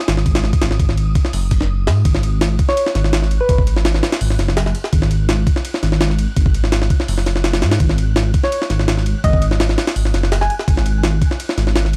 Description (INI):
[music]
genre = drum and bass, jungle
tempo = 167 BPM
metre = 4/4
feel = straight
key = unclear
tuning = A4 = 440 Hz
[part]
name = wind-like tuned noise texture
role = texture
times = 0.0-12.0 s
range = D#6 to F#6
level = -39 LUFS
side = equal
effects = built-in reverb
[part]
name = dark detuned saw bass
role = bass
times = 0.1-12.0 s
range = F#1 to G#2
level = -19 LUFS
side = equal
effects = none
[part]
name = jungle sampler-style drum kit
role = drums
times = 0.1-12.0 s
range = hi-hat, kick drum, ride cymbal, snare drum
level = -20 LUFS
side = equal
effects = none
[part]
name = soft struck synth lead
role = melody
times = 2.7-3.8, 8.4-10.6 s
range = B4 to G#5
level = -25 LUFS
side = equal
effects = chorus, phaser, dub echo
[sound]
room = little or no reverb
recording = dry, gritty hardware recording, transformer saturation, vinyl crackle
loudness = -17 LUFS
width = mono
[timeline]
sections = 0.0-12.0 A section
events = none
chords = 0.0 G#7(no3)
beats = 0.26 | 0.62 0.98 1.34 1.70 | 2.06 2.41 2.77 3.13 | 3.49 3.85 4.21 4.57 | 4.93 5.29 5.65 6.01 | 6.37 6.72 7.08 7.44 | 7.80 8.16 8.52 8.88 | 9.24 9.60 9.96 10.32 | 10.68 11.04 11.40 11.76